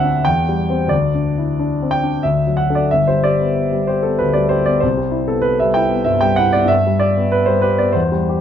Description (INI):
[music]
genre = classical, romantic character piece for solo piano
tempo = 88-100 BPM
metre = 3/4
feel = rubato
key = G major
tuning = A4 = 440 Hz
[part]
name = warm concert grand piano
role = solo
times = 0.0-8.4 s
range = G1 to G5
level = -14 LUFS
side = equal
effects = none
[sound]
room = light reverb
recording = dark, warm production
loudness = -14 LUFS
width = side -9 dB against mid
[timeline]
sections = 0.0-2.9 A section; 2.9-8.4 B section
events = none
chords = 0.2 C/E; 0.9 D9sus4; 2.2 D; 2.9 G; 4.8 Cmaj7; 6.7 G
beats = 0.25 | 0.90 1.58 2.24 | 2.90 3.56 4.20 | 4.83 5.46 6.08 | 6.70 7.32 7.95